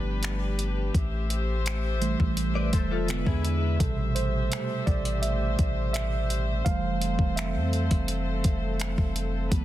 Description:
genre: contemporary R&B.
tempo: 84 BPM.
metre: 4/4.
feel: straight.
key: A minor.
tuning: A4 = 440 Hz.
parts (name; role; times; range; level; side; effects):
mellow tine electric piano; accompaniment; 0.0-9.6 s; B2 to F5; -31 LUFS; right 6 dB; none.
warm studio string section; sustained chords; 0.0-9.6 s; G3 to E5; -34 LUFS; left 3 dB; sidechain pumping.
long sustained 808-style bass; bass; 0.0-9.6 s; E1 to F2; -28 LUFS; equal; none.
clean 12-bit digital drum machine; drums; 0.2-9.6 s; finger snaps, hi-hat, kick drum; -27 LUFS; equal; overdrive, soft clipping on snare.
direct-recorded clean electric guitar; arpeggios; 2.6-3.8 s; E4 to D5; -34 LUFS; left 9 dB; ensemble chorus, tape echo.
room: little or no reverb.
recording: dense, heavily limited modern master.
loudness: -24 LUFS.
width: side -14 dB against mid.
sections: 0.0-9.6 A section.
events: tine electric piano solo 0.0-9.6.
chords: 0.0 G7; 0.9 Am7; 3.1 E7; 3.8 Am7; 6.7 Fmaj7.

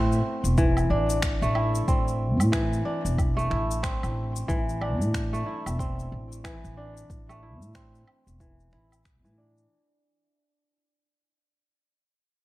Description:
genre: organic downtempo.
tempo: 92 BPM.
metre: 4/4.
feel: swing 60% on 16ths.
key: A minor.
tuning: A4 = 441 Hz.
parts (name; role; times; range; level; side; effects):
kora; arpeggios; 0.0-11.1 s; E3 to F#4; -29 LUFS; equal; low-pass filter, digital delay.
upright bass; bass; 0.0-9.6 s; E1 to A2; -27 LUFS; equal; sidechain pumping.
electronic cabasa, woodblock and finger snaps; drums; 0.1-9.7 s; none; -36 LUFS; equal; small room ambience.
electronic kick drum; drums; 0.6-9.2 s; none; -28 LUFS; equal; overdrive, small room ambience.
room: light reverb, small room ambience.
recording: dark, warm production.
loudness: -23 LUFS.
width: side -17 dB against mid.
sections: 0.0-9.7 A section.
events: fade-out 0.0-9.7.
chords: 0.0 Am.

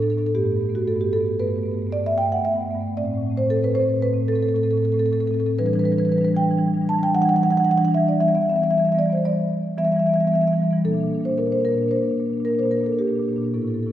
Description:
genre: classical, contemporary piece for solo marimba.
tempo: 114 BPM.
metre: 5/4.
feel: rubato.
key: unclear.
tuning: A4 = 441 Hz.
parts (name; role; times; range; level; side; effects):
marimba with soft mallets; solo; 0.0-13.9 s; G2 to A5; -19 LUFS; equal; none.
room: wet concert hall reverb, RT60 2.6 s.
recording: heard from further back in the room.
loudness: -19 LUFS.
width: side -12 dB against mid.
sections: 0.0-13.9 A section.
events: none.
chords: 0.3 Gadd9; 3.0 Am; 5.6 Em9; 8.2 G6/E; 10.8 Bb.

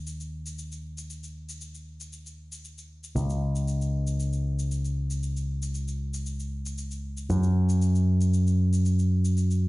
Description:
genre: nu-disco, nu disco.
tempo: 116 BPM.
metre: 4/4.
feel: straight.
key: Eb minor.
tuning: A4 = 438 Hz.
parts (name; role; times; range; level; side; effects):
picked electric bass with an envelope filter; bass; 0.0-9.7 s; Db2 to Gb2; -25 LUFS; equal; none.
shaker; drums; 0.1-9.6 s; none; -42 LUFS; left 2 dB; none.
room: little or no reverb.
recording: played on a big sound system in a bare room, large studio reverb, nothing above 10.8 kHz.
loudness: -24 LUFS.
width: side -20 dB against mid.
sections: 0.0-9.7 A section.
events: none.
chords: none.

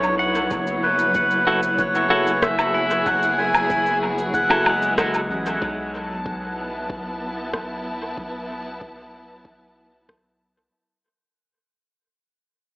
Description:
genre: ambient dub.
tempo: 94 BPM.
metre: 4/4.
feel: straight.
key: unclear.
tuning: A4 = 441 Hz.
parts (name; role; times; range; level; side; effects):
melodica; melody; 0.0-4.9 s; B4 to G#5; -22 LUFS; equal; dub echo.
warm studio string section; sustained chords; 0.0-10.7 s; F#3 to A5; -28 LUFS; equal; none.
pedal steel guitar; arpeggios; 0.0-6.5 s; G#3 to F#5; -29 LUFS; equal; dub echo.
round analog bass; bass; 0.0-10.7 s; F#1 to B1; -33 LUFS; equal; none.
electronic cabasa, rim click and woodblock; drums; 0.0-10.2 s; none; -26 LUFS; equal; overdrive, studio ambience, dub echo.
electronic kick drum; drums; 0.5-10.2 s; none; -33 LUFS; equal; overdrive, studio ambience.
clean electric guitar; stabs; 1.5-4.7 s; E4 to A4; -25 LUFS; equal; vintage 12-bit sampler grit, dub echo.
room: moderate spring reverb, RT60 2.7 s.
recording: echo-heavy mix, AM radio sound.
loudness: -19 LUFS.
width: side -22 dB against mid.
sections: 0.0-5.6 A section; 5.6-10.7 B section.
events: fade-out 5.6-10.7; filter sweep on analog synth bass 5.6-10.7.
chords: 0.0 Bmadd9; 0.5 F#m7; 5.6 B5.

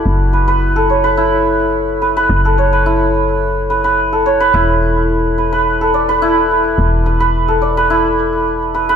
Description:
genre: organic downtempo.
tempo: 107 BPM.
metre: 4/4.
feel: straight.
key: unclear.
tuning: A4 = 440 Hz.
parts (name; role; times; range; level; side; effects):
santur; arpeggios; 0.0-9.0 s; E4 to D5; -13 LUFS; right 1 dB; digital delay.
woody FM bass; bass; 0.0-9.0 s; E1 to F#1; -18 LUFS; equal; none.
cabasa; drums; 0.1-9.0 s; none; barely audible; none; none.
room: light reverb, digital ambience.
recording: none.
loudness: -11 LUFS.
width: side -7 dB against mid.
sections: 0.0-9.0 A section.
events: none.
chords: 0.1 F#m7; 4.5 E5.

